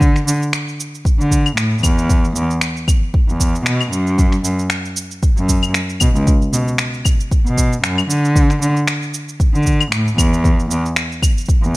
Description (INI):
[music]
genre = folktronica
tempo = 115 BPM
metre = 4/4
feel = swing 56% on 16ths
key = unclear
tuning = A4 = 440 Hz
[part]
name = rich cello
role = bass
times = 0.0-11.8 s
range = C#2 to D3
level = -18 LUFS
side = equal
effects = tube saturation
[part]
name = electronic kick drum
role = drums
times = 0.0-11.8 s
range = none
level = -15 LUFS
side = equal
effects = studio reverb
[part]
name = electronic shaker, finger snaps and claves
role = drums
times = 0.0-11.7 s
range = none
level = -21 LUFS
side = left 1 dB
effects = studio reverb
[sound]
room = digital ambience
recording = none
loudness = -14 LUFS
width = side -20 dB against mid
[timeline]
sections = 0.0-11.8 A section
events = none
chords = none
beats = | 0.01 0.53 1.05 1.58 | 2.10 2.62 3.14 3.66 | 4.18 4.71 5.23 5.75 | 6.27 6.79 7.32 7.84 | 8.36 8.88 9.40 9.92 | 10.45 10.97 11.49